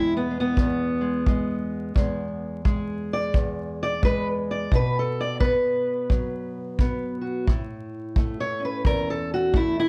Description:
acoustic country blues, solo or duo; 87 BPM; 4/4; swing 60% on 8ths; E mixolydian; A4 = 440 Hz
fingerpicked steel-string acoustic guitar; melody; 0.0-9.9 s; E2 to D5; -27 LUFS; equal
kick drum; drums; 0.6-9.7 s; -26 LUFS; equal
light reverb; dark, warm production, vinyl crackle; -25 LUFS; mono
0.0-9.9 A section
steel-string acoustic guitar solo 0.0-9.9
0.0 E; 4.7 B5; 7.5 A

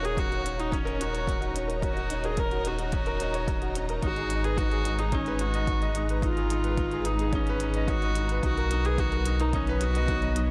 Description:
piano and strings electronica; 109 BPM; 4/4; straight; A4 = 441 Hz
dark viola; melody; 0.0-10.4 s; Db4 to Bb4; -34 LUFS; equal; shimmer reverb
dark studio string section; sustained chords; 0.0-10.5 s; F#3 to Bb5; -40 LUFS; equal; sidechain pumping, shimmer reverb
clear grand piano; riff; 0.0-10.5 s; Db4 to Eb5; -35 LUFS; equal; shimmer reverb
warm sub bass; bass; 0.0-10.5 s; Eb1 to B1; -32 LUFS; equal; sidechain pumping
electronic hi-hat; drums; 0.0-10.5 s; -44 LUFS; equal
electronic kick drum; drums; 0.2-10.2 s; -34 LUFS; equal; overdrive
light reverb, studio reverb; -28 LUFS; mono
0.0-10.5 A section
0.0 Ebm7; 4.0 Abm7; 8.4 Bmaj7

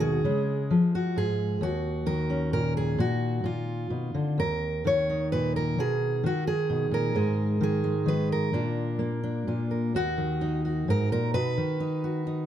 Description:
folk, solo fingerstyle acoustic guitar; 130 BPM; 3/4; straight; Eb minor; A4 = 440 Hz
fingerpicked steel-string acoustic guitar; solo; 0.0-12.5 s; Eb2 to Db5; -25 LUFS; equal; slapback echo
light reverb; close, detailed microphones; -25 LUFS; side -10 dB against mid
0.0-10.0 A section; 10.0-12.5 B section
0.2 Db; 1.6 Ebm7; 3.0 Ebm/Bb; 3.5 Bb; 4.4 Eb5; 5.8 B; 7.2 Ab5; 8.6 Bb; 10.0 Ebm; 11.3 B

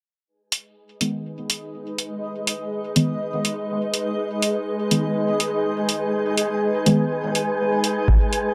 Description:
dub techno; 123 BPM; 4/4; straight; G# minor; A4 = 441 Hz
granular cloud pad; sustained chords; 1.6-8.5 s; G#3 to F#5; -27 LUFS; equal; built-in reverb, sidechain pumping
wind-like tuned noise texture; texture; 1.5-8.5 s; G#4; -30 LUFS; equal; built-in reverb, sidechain pumping
electronic hi-hat; drums; 0.5-8.4 s; -26 LUFS; equal; overdrive
deep mellow chord stab; stabs; 1.0-7.0 s; D#3 to B3; -26 LUFS; equal; chorus, phaser, sidechain pumping, dub echo
pure sine sub bass; bass; 8.1-8.2 s; G#1; -20 LUFS; equal; sidechain pumping
electronic kick drum; drums; 8.1-8.2 s; -22 LUFS; equal
moderate spring reverb, RT60 1.3 s; -23 LUFS; mono
0.3-8.5 A section
filter sweep on synth stab 0.3-8.5
0.3 G#m

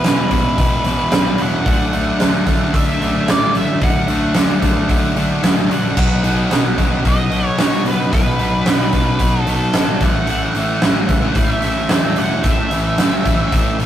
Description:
classic rock; 111 BPM; 4/4; straight; A4 = 439 Hz
octave-fuzz lead guitar; melody; 0.0-13.9 s; B4 to F#5; -23 LUFS; equal; wah, distortion
cranked stack guitar; riff; 0.0-13.9 s; E2 to D4; -22 LUFS; right 4 dB; overdrive
sludgy distorted guitar; riff; 0.0-13.9 s; A2 to E4; -21 LUFS; left 4 dB; overdrive
fuzz picked electric bass; bass; 0.0-13.9 s; E1 to A2; -24 LUFS; equal; overdrive
huge arena drum kit; drums; 0.0-13.9 s; crash cymbal, hi-hat, kick drum, snare drum; -17 LUFS; equal
tambourine; percussion; 0.1-13.1 s; -38 LUFS; right 4 dB
moderate booth ambience, RT60 0.2 s; rough rehearsal-room recording, warm saturation; -14 LUFS; side -11 dB against mid
0.0-13.9 A section
0.0 E; 1.7 D; 6.0 B; 10.0 A

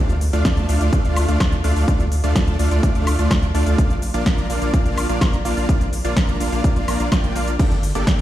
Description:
EDM, festival progressive house; 126 BPM; 4/4; straight; A4 = 440 Hz
dense compressed supersaw; riff; 0.0-8.2 s; A3 to Bb5; -23 LUFS; equal; sidechain pumping, tape echo
saturated sub bass; bass; 0.0-8.2 s; G1 to D2; -21 LUFS; equal; sidechain pumping
big-room dance drum kit; drums; 0.1-8.2 s; crash cymbal, hi-hat, ride cymbal, shaker, snare drum, woodblock; -26 LUFS; equal; overdrive
electronic kick drum; drums; 0.5-8.2 s; -18 LUFS; equal
little or no reverb; played on a big sound system in a bare room, stone room reverb; -16 LUFS; side -13 dB against mid
0.0-8.2 A section
0.0 Dm; 3.8 Bb; 7.6 Gmadd9

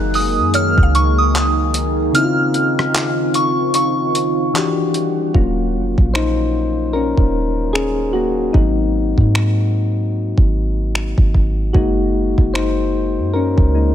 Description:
contemporary R&B; 75 BPM; 4/4; swing 58% on 16ths; Eb dorian; A4 = 442 Hz
soft synth bell; melody; 0.0-4.9 s; Db6 to Gb6; -19 LUFS; right 1 dB; chorus, ping-pong delay
soft electric-piano-like synth keys; accompaniment; 0.0-13.9 s; Db3 to C5; -19 LUFS; left 3 dB; chorus
deep dark ambient pad; sustained chords; 0.0-5.3 s; Eb3 to Ab4; -21 LUFS; right 1 dB; chorus, built-in reverb, sidechain pumping
soft 808-style bass; bass; 0.0-13.9 s; Eb1 to Ab2; -19 LUFS; equal
dusty soul sampler-style drum kit; drums; 0.1-13.7 s; finger snaps, handclaps, hi-hat, kick drum, rim click; -16 LUFS; equal
mallet-like synth pluck; texture; 0.5-2.5 s; Db5 to F5; -28 LUFS; right 3 dB; chorus, ping-pong delay
digital ambience; -14 LUFS; side -10 dB against mid
0.0-5.3 A section; 5.3-13.9 B section
kick muted 2.1-5.3; synth keys solo 5.3-13.9
0.0 Gb69; 2.1 Dbmaj9; 4.5 Em9; 5.3 Ebm9; 8.5 Ab7; 11.7 Gb69

